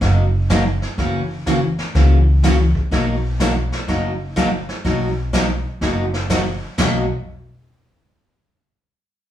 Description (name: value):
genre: country, western swing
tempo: 124 BPM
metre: 4/4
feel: swing 66% on 8ths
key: B major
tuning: A4 = 440 Hz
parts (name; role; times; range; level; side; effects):
- picked steel-string acoustic guitar; accompaniment; 0.0-7.0 s; B2 to F#4; -20 LUFS; equal; none
- upright bass; bass; 0.0-7.1 s; F#1 to C#2; -19 LUFS; equal; none
- vintage brush drum kit; drums; 0.0-7.2 s; brushed snare drum, hi-hat, kick drum, snare drum, splash cymbal, toms; -25 LUFS; equal; none
room: moderate studio reverb, RT60 0.6 s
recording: band playing live in one room, studio reverb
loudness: -16 LUFS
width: side -11 dB against mid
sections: 0.0-4.8 A section; 4.8-6.8 B section; 6.8-8.7 C section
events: none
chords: 0.0 Bmaj7; 1.0 F#7; 2.9 Bmaj7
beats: 0.02 0.50 | 0.98 1.47 1.95 2.43 | 2.92 3.40 3.88 4.37 | 4.85 5.33 5.82 6.30 | 6.78